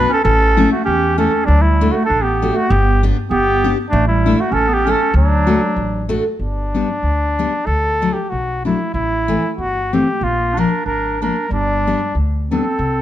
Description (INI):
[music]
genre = alpine folk, alpine dance band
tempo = 92-99 BPM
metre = 2/4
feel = swing 55% on 8ths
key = D major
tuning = A4 = 440 Hz
[part]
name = clear flugelhorn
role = melody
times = 0.0-13.0 s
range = D4 to B4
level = -18 LUFS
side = equal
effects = none
[part]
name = clear clarinet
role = second line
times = 0.0-6.1, 10.2-13.0 s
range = F#3 to D4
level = -21 LUFS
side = right 6 dB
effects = none
[part]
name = picked steel-string acoustic guitar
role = accompaniment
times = 0.0-12.6 s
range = E3 to G4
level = -20 LUFS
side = left 3 dB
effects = none
[part]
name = upright bass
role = bass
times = 0.0-13.0 s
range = G1 to E2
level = -18 LUFS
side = equal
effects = none
[sound]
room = light reverb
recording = close, detailed microphones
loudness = -14 LUFS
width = side -12 dB against mid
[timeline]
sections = 0.0-6.4 A section; 6.4-13.0 B section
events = none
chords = 0.3 A; 1.5 D; 2.7 G; 3.9 Asus4; 4.5 A; 5.1 D; 6.4 G; 7.7 D; 8.9 Am; 10.2 Bb; 11.5 G